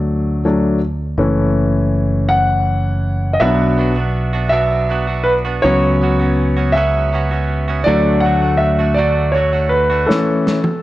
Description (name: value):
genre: six-eight pop ballad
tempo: 54 BPM (dotted quarters)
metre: 6/8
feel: straight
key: unclear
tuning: A4 = 441 Hz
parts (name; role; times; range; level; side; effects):
- clear grand piano; accompaniment; 0.0-10.8 s; E3 to F#5; -16 LUFS; left 1 dB; none
- fingered electric bass; bass; 0.0-10.1 s; F#1 to D2; -18 LUFS; equal; none
- direct-recorded clean electric guitar; arpeggios; 3.4-10.1 s; B2 to F#4; -22 LUFS; right 4 dB; analog delay
- modern studio drum kit; drums; 10.1-10.8 s; snare drum, toms; -19 LUFS; equal; none
room: light reverb, studio reverb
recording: worn, warbling old tape, cassette tape, warbly pitch drift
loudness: -13 LUFS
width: side -16 dB against mid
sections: 0.0-10.8 A section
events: grand piano solo 0.0-10.8; drum fill 10.1-10.8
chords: 0.0 D; 1.2 F#m7; 3.4 Bm; 5.6 F#sus4/C#; 7.9 D; 10.1 A/E